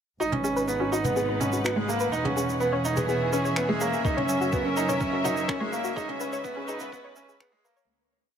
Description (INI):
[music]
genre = piano and strings electronica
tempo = 125 BPM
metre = 4/4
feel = straight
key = G# minor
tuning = A4 = 440 Hz
[part]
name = muted studio string section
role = sustained chords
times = 0.2-7.9 s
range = C#3 to F#5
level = -32 LUFS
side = equal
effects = sidechain pumping, low-pass filter
[part]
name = soft round pluck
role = arpeggios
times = 0.2-7.8 s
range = F#4 to C#5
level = -32 LUFS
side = left 4 dB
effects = chorus, sidechain pumping, digital delay
[part]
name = bright baby grand piano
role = riff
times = 0.2-7.8 s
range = G#3 to D#4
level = -27 LUFS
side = right 2 dB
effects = digital delay
[part]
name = warm studio double bass section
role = bass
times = 0.2-7.9 s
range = E1 to C#2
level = -35 LUFS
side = equal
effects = sidechain pumping
[part]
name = jazz brush drum kit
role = drums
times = 0.2-7.9 s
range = finger snaps, shaker, toms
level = -35 LUFS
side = right 1 dB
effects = none
[part]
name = electronic kick drum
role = drums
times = 4.0-7.5 s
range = none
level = -30 LUFS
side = equal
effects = none
[sound]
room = moderate huge ambient reverb, RT60 6.6 s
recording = high-pass filter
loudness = -24 LUFS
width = side -8 dB against mid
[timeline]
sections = 0.2-7.9 build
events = build-up 0.2-7.9; fade-out 5.3-7.9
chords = 0.2 G#m7; 2.1 E6; 4.0 F#7; 6.0 C#m7